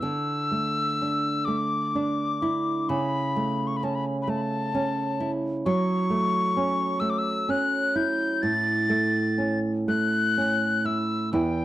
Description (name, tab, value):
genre	celtic folk, Celtic slow air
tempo	40-45 BPM (dotted quarters)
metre	6/8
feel	rubato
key	unclear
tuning	A4 = 439 Hz
part	breathy mid whistle	melody	0.0-11.6 s	G5 to A6	-26 LUFS	left 3 dB	slapback echo
part	nylon-string guitar	accompaniment	0.0-11.6 s	E2 to E4	-26 LUFS	right 2 dB	none
room	light reverb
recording	dry, close 1970s-style studio recording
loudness	-23 LUFS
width	side -14 dB against mid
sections	0.0-11.3 A section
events	none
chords	0.0 Dsus2; 2.9 A/C#; 5.7 F#m7; 8.4 A